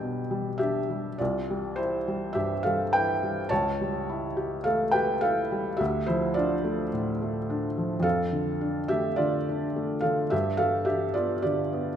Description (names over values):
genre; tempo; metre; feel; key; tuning
classical, romantic nocturne for solo piano; 52 BPM; 4/4; rubato; unclear; A4 = 440 Hz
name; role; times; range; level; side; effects
felt-muted upright piano; solo; 0.0-12.0 s; B1 to A5; -25 LUFS; equal; none
room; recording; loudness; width
moderate concert hall reverb, RT60 2.2 s; none; -25 LUFS; side -9 dB against mid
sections
0.0-12.0 A section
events
none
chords
0.0 G/B; 1.2 C; 3.5 A7/C#; 5.8 Dm; 8.0 Dm/F; 10.3 G